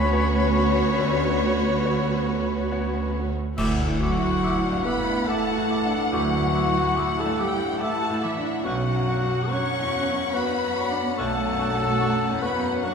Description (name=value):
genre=cinematic, emotional film score for orchestra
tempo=71 BPM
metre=3/4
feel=rubato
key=B minor, D major from 3.6 s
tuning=A4 = 439 Hz
part: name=warm studio violin section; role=melody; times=0.0-12.9 s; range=C#5 to F#5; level=-30 LUFS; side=left 4 dB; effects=none
part: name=bright concert flute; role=second line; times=0.0-12.9 s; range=B5 to D6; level=-35 LUFS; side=equal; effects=none
part: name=dark clarinet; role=second line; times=0.0-12.9 s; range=E4 to C#5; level=-29 LUFS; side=left 3 dB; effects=none
part: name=rich studio violin section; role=second line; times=0.0-12.9 s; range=B4 to C#6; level=-31 LUFS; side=left 2 dB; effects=none
part: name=warm oboe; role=second line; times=0.0-12.9 s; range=C#5 to F#5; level=-37 LUFS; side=equal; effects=none
part: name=bright grand piano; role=accompaniment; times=0.0-12.9 s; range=B1 to C#5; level=-31 LUFS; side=left 2 dB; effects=none
part: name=warm studio viola section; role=accompaniment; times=0.0-12.9 s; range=A3 to F#4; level=-34 LUFS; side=right 1 dB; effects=none
part: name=warm French horn section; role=sustained chords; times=0.0-12.9 s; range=E3 to C#5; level=-32 LUFS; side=left 3 dB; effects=none
part: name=rich studio double bass section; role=bass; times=0.0-11.9 s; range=B1 to D2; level=-28 LUFS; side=right 2 dB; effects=none
part: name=warm studio cello section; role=bass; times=0.0-12.9 s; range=D2 to C#4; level=-28 LUFS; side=right 5 dB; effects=none
part: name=clash cymbals and concert bass drum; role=percussion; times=3.6-5.2 s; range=none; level=-31 LUFS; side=equal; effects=none
room=wet scoring stage reverb, RT60 1.5 s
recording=minimal, uncompressed stereo recording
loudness=-21 LUFS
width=side -6 dB against mid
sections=0.0-3.6 A section; 3.6-12.9 B section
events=band accent 3.6-4.4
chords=0.0 Bmadd9/D; 3.6 Dadd9; 8.6 Bmadd9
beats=0.12 | 0.98 1.85 2.71 | 3.57 4.43 5.28 | 6.12 6.97 7.81 | 8.65 9.51 10.35 | 11.18 12.01 12.84